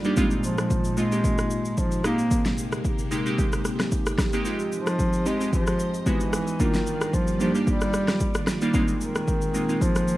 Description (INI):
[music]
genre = amapiano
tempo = 112 BPM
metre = 4/4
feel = swing 55% on 16ths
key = unclear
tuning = A4 = 441 Hz
[part]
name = glassy digital keys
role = accompaniment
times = 0.0-10.2 s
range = G3 to G4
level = -27 LUFS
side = right 1 dB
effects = chorus
[part]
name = string machine, full ensemble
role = sustained chords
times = 0.0-10.2 s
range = Bb2 to Eb5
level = -32 LUFS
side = equal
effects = phaser, ensemble chorus, sidechain pumping
[part]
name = deep house drum kit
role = drums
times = 0.0-10.2 s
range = kick drum, rim click, shaker, snare drum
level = -26 LUFS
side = equal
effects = none
[part]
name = warm bass clarinet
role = melody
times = 0.4-10.2 s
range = Eb3 to Bb3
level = -27 LUFS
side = equal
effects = analog delay
[sound]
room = moderate studio reverb, RT60 0.5 s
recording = rough home demo mix, vinyl crackle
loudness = -22 LUFS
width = side -16 dB against mid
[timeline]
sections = 0.0-10.2 A section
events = break 4.5-5.0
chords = 0.2 Bb7sus4; 2.0 Abmaj9; 4.5 Fm9; 6.1 Emaj9; 6.6 Ebmaj9; 8.7 Bb7sus4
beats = | 0.17 0.70 1.24 1.78 | 2.31 2.85 3.38 3.92 | 4.45 4.99 5.53 6.06 | 6.60 7.13 7.67 8.20 | 8.74 9.28 9.81